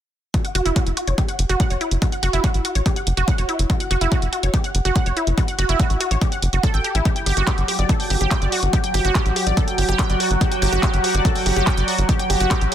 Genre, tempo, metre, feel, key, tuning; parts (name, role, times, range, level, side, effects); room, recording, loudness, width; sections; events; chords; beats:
psychedelic trance; 143 BPM; 4/4; straight; F# phrygian; A4 = 441 Hz
wide unison pluck; riff; 0.3-12.7 s; E4 to G5; -24 LUFS; moving between left 3 dB and right 4 dB; auto-pan, sidechain pumping, tape echo
drum and bass drum kit; drums; 0.3-12.7 s; handclaps, hi-hat; -26 LUFS; right 1 dB
electronic kick drum; drums; 0.3-12.6 s; -20 LUFS; equal
tight sequencer bass; bass; 0.6-12.7 s; F#1 to A1; -20 LUFS; equal; tube saturation
bubbling stepped-filter texture; sustained chords; 7.1-12.7 s; F#3 to F#4; -23 LUFS; equal; chorus, built-in reverb, sidechain pumping
light reverb; dense, heavily limited modern master; -17 LUFS; side -10 dB against mid
0.3-12.7 A section
0.3 F#5; 7.1 G5
| 0.34 0.76 1.18 1.60 | 2.02 2.44 2.86 3.28 | 3.70 4.12 4.54 4.96 | 5.38 5.79 6.21 6.63 | 7.05 7.47 7.89 8.31 | 8.73 9.15 9.57 9.99 | 10.41 10.83 11.25 11.67 | 12.09 12.51